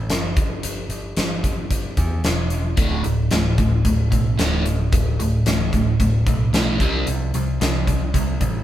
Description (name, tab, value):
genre	classic rock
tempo	112 BPM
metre	4/4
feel	straight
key	unclear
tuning	A4 = 440 Hz
part	modern bright picked electric bass	bass	0.0-8.6 s	D1 to E2	-24 LUFS	equal	none
part	huge arena drum kit	drums	0.1-8.5 s	hi-hat, kick drum, snare drum	-22 LUFS	equal	none
part	crunchy overdriven guitar	riff	2.8-8.6 s	D2 to C4	-21 LUFS	equal	phaser
room	moderate studio reverb, RT60 0.6 s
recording	band playing live in one room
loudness	-18 LUFS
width	side -12 dB against mid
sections	0.0-8.6 A section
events	none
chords	0.4 Em; 2.8 D5; 6.8 C5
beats	0.10 | 0.63 1.17 1.70 2.24 | 2.77 3.31 3.85 4.38 | 4.92 5.46 5.99 6.53 | 7.07 7.60 8.14